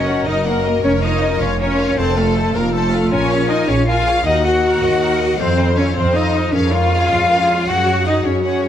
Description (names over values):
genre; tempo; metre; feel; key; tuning
cinematic, heroic adventure film score; 105 BPM (dotted quarters); 12/8; straight; Bb minor; A4 = 441 Hz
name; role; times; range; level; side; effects
warm symphonic violin section; melody; 0.0-8.7 s; C5 to A5; -27 LUFS; left 5 dB; none
rich symphonic violin section; second line; 0.0-8.7 s; A4 to Gb5; -27 LUFS; left 4 dB; none
silver concert flute; second line; 0.0-8.7 s; A4 to Gb5; -24 LUFS; left 2 dB; none
warm clarinet; second line; 0.0-8.7 s; A4 to Gb5; -26 LUFS; left 2 dB; none
rich symphonic viola section; accompaniment; 0.0-8.7 s; C4 to Db5; -26 LUFS; right 1 dB; none
mellow French horn section; sustained chords; 0.0-8.7 s; F4 to Eb5; -24 LUFS; left 4 dB; none
concert harp; arpeggios; 0.0-8.7 s; F2 to Gb5; -27 LUFS; left 8 dB; none
rich symphonic cello section; bass; 0.0-8.7 s; A3 to Gb4; -19 LUFS; equal; none
rich symphonic double bass section; bass; 0.0-8.7 s; F1 to Gb2; -20 LUFS; right 2 dB; none
room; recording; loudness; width
moderate scoring stage reverb, RT60 1.6 s; none; -14 LUFS; side -10 dB against mid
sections
0.0-8.7 A section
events
none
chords
0.0 Ebm/Gb; 0.8 Bbm/F; 2.0 F; 3.1 Bbm7; 4.3 Ebm; 5.4 F; 6.5 Db/F; 7.7 Gbsus2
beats
0.27 | 0.84 1.41 1.98 2.55 | 3.12 3.69 4.26 4.83 | 5.40 5.97 6.54 7.11 | 7.68 8.26